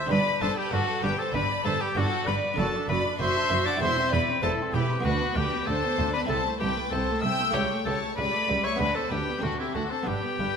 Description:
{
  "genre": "classical, baroque-style concerto movement with solo episodes",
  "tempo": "96 BPM",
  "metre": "4/4",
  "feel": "straight",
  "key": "G major",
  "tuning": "A4 = 439 Hz",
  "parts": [
    { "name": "warm oboe", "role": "melody", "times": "0.0-10.6 s", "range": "E4 to E5", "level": "-29 LUFS", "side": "left 1 dB", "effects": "none" },
    { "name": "rich chamber violin section", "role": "second line", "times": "0.0-10.6 s", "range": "G4 to G5", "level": "-32 LUFS", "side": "equal", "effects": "none" },
    { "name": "buff-stop harpsichord", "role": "accompaniment", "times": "0.0-10.6 s", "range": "C2 to D5", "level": "-35 LUFS", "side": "equal", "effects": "none" },
    { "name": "warm chamber violin section", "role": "melody", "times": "0.1-10.6 s", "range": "E5 to E6", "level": "-32 LUFS", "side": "left 4 dB", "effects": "none" },
    { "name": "dark chamber viola section", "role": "accompaniment", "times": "0.1-10.6 s", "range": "G3 to F#4", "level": "-34 LUFS", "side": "equal", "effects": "none" },
    { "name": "dark studio double bass section", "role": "bass", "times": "0.1-10.5 s", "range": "E1 to D2", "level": "-33 LUFS", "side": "right 2 dB", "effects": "none" },
    { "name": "warm chamber cello section", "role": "bass", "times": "0.1-10.5 s", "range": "C2 to G2", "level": "-33 LUFS", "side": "right 2 dB", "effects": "none" }
  ],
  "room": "wet scoring stage reverb, RT60 1.4 s",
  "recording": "minimal, uncompressed stereo recording",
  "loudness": "-24 LUFS",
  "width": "side -6 dB against mid",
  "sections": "0.0-10.6 A section",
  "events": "none",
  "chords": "0.1 G; 2.6 D/F#; 3.8 C/E; 5.1 Bm/D; 6.3 Am/C; 7.5 A7/C#; 8.8 G/D; 9.4 D5",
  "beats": "| 0.10 0.72 1.34 1.96 | 2.58 3.20 3.82 4.43 | 5.05 5.68 6.30 6.92 | 7.55 8.18 8.80 9.43 | 10.07"
}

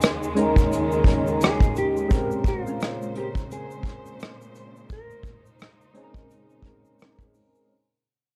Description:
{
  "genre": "lo-fi hip hop",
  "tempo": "86 BPM",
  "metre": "4/4",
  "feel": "swing 60% on 16ths",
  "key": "Bb minor",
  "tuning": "A4 = 441 Hz",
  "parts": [
    { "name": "warm studio string section", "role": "sustained chords", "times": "0.0-7.7 s", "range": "Eb2 to C5", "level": "-34 LUFS", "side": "equal", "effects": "low-pass filter" },
    { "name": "vintage brush drum kit", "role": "drums", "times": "0.0-7.5 s", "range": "hi-hat, kick drum, rim click", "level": "-24 LUFS", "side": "equal", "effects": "none" },
    { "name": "tube shaker", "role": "percussion", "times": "0.0-7.7 s", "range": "none", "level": "-49 LUFS", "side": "equal", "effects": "none" },
    { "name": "soft electric-piano-like synth keys", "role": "accompaniment", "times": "0.4-7.7 s", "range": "Ab3 to Bb4", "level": "-28 LUFS", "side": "equal", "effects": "chorus, phaser, low-pass filter" },
    { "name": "mellow electric guitar", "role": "melody", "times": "1.4-5.6 s", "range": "F4 to Bb4", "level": "-32 LUFS", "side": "equal", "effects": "analog chorus, low-pass filter" }
  ],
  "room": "light reverb",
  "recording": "dry, gritty hardware recording",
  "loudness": "-23 LUFS",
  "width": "mono",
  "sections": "0.0-7.7 A section",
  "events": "fade-out 0.0-7.7",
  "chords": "0.0 Eb7sus4; 2.1 Bbm9; 4.9 Bbm11",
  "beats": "0.02 0.72 1.41 | 2.11 2.81 3.51 4.20 | 4.90 5.60 6.30 7.00"
}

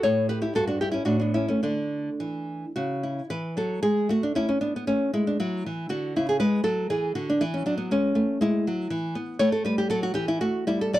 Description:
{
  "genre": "classical, baroque-style dance for nylon-string guitar",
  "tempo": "104-122 BPM",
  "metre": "3/4",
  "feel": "rubato",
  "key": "D major, A major from 3.3 s",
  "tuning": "A4 = 440 Hz",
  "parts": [
    { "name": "nylon-string guitar", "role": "solo", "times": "0.0-11.0 s", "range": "G2 to D5", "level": "-23 LUFS", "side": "equal", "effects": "none" }
  ],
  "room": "light reverb",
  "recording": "dark, warm production",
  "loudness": "-23 LUFS",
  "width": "side -14 dB against mid",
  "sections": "0.0-3.3 A section; 3.3-11.0 A section",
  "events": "none",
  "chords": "0.0 A9; 0.5 G5; 1.1 A; 1.6 D5; 3.3 A/E; 4.9 A; 6.4 E; 7.9 E/G#; 9.4 A5",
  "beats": "| 0.02 0.53 1.07 | 1.63 2.20 2.75 | 3.31 3.83 4.36 | 4.87 5.39 5.90 | 6.40 6.91 7.42 | 7.92 8.41 8.91 | 9.41 9.92 10.42 | 10.94"
}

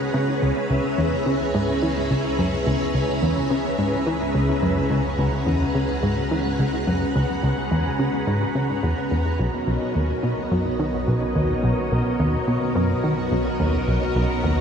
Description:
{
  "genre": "ambient, sequencer-driven space music",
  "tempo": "107 BPM",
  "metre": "4/4",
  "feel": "straight",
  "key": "C# dorian",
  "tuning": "A4 = 439 Hz",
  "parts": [
    { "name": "string machine, full ensemble", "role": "sustained chords", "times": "0.0-14.6 s", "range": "B3 to F#5", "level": "-24 LUFS", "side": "equal", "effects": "ensemble chorus" },
    { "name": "analog drone", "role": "bass", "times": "0.0-14.6 s", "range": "B1 to C#2", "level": "-31 LUFS", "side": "equal", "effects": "chorus" },
    { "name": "bubbling stepped-filter texture", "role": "texture", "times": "0.0-14.6 s", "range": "A#4 to A#5", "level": "-34 LUFS", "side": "equal", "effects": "chorus, built-in reverb" },
    { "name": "plucky analog bass", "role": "riff", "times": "0.1-14.6 s", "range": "B1 to E3", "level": "-23 LUFS", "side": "equal", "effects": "wide subtle chorus, cassette tape, tape echo" }
  ],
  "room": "wet shimmer reverb, RT60 8.4 s",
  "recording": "none",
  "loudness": "-20 LUFS",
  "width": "side -7 dB against mid",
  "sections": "0.0-14.6 A section",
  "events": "fade-in on synth texture 0.0-14.6",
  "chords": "0.0 C#m7; 9.4 Badd9",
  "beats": "| 0.42 0.98 1.54 2.10 | 2.67 3.23 3.79 4.35 | 4.91 5.47 6.03 6.59 | 7.15 7.71 8.27 8.83 | 9.39 9.95 10.52 11.08 | 11.64 12.20 12.76 13.32 | 13.88 14.44"
}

